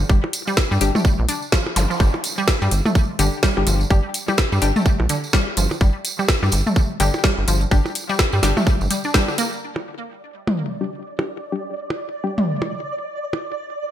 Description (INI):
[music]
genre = minimal techno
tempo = 126 BPM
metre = 4/4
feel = swing 60% on 16ths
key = unclear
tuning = A4 = 440 Hz
[part]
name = rubbery square bass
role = bass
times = 0.0-8.9 s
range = G1 to G2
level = -20 LUFS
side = equal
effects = sidechain pumping
[part]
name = tambourine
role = percussion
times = 0.0-9.6 s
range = none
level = -30 LUFS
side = right 4 dB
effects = none
[part]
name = resonant blip pluck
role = riff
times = 0.1-9.4 s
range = D3 to D4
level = -26 LUFS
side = equal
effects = chorus, sidechain pumping, digital delay
[part]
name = electronic kick drum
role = drums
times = 0.1-9.3 s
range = none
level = -17 LUFS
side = equal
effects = none
[part]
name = electronic percussion blips and toms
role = percussion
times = 0.2-13.4 s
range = none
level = -24 LUFS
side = equal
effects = gated reverb, ping-pong delay
[part]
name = garage drum kit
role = drums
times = 0.3-9.5 s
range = hi-hat, snare drum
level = -22 LUFS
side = left 1 dB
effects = gated reverb
[part]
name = filtered dub chord stab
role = stabs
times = 0.8-12.3 s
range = G3 to G4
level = -26 LUFS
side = left 5 dB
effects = chorus, ping-pong delay
[part]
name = zap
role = sound effects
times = 1.8-1.9 s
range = none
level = -28 LUFS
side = equal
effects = none
[part]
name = flickering grainy texture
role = texture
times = 10.3-13.9 s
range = D5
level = -30 LUFS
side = right 2 dB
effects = built-in reverb, ensemble chorus, sidechain pumping
[sound]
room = light reverb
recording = bright 1980s-style digital production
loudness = -18 LUFS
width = side -11 dB against mid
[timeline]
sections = 0.0-9.6 A section; 9.6-13.9 B section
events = drop 0.0-9.6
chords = 0.0 G5